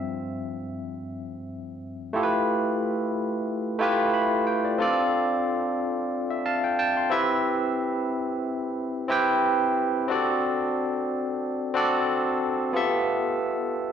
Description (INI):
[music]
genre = soul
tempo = 91 BPM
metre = 4/4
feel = swing 54% on 16ths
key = unclear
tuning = A4 = 440 Hz
[part]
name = barky tine electric piano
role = solo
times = 0.0-13.9 s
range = G2 to C6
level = -23 LUFS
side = equal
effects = medium stereo tremolo
[sound]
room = wet large studio reverb, RT60 1.3 s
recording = band playing live in one room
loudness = -23 LUFS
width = side -8 dB against mid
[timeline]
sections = 0.0-2.2 A section; 2.2-13.9 B section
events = tine electric piano solo 0.0-2.2; tine electric piano fill 6.1-7.5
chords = 0.0 G7sus4; 2.2 G13; 4.8 Dm7; 7.1 Cmaj7; 10.1 D7; 12.8 G13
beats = 0.17 0.83 1.49 | 2.16 2.82 3.48 4.14 | 4.81 5.47 6.13 6.79 | 7.46 8.12 8.78 9.44 | 10.10 10.77 11.43 12.09 | 12.75 13.41